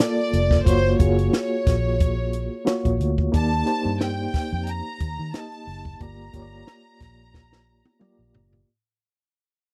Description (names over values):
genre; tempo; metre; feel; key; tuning
lush 1970s-style soul; 90 BPM; 4/4; swing 54% on 16ths; unclear; A4 = 441 Hz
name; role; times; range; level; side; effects
warm studio violin section; melody; 0.0-8.4 s; C5 to Bb5; -30 LUFS; equal; none
mellow reed electric piano; accompaniment; 0.0-8.7 s; Bb3 to Eb5; -28 LUFS; equal; fast tremolo
compact cocktail drum kit; drums; 0.0-8.7 s; hi-hat, kick drum, snare drum, toms; -25 LUFS; equal; none
vintage muted fingered electric bass; bass; 0.3-8.6 s; F1 to Eb3; -27 LUFS; equal; none
room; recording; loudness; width
little or no reverb; dry, close 1970s-style studio recording; -22 LUFS; mono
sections
0.0-8.7 A section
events
fade-out 0.0-8.7; drum fill 7.3-8.7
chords
0.0 Bbmaj7; 0.7 Gbmaj7; 3.3 Ebmaj7; 6.0 Gm7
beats
0.00 | 0.66 1.33 2.00 2.67 | 3.34 4.00 4.67 5.34 | 6.01 6.67 7.34 8.01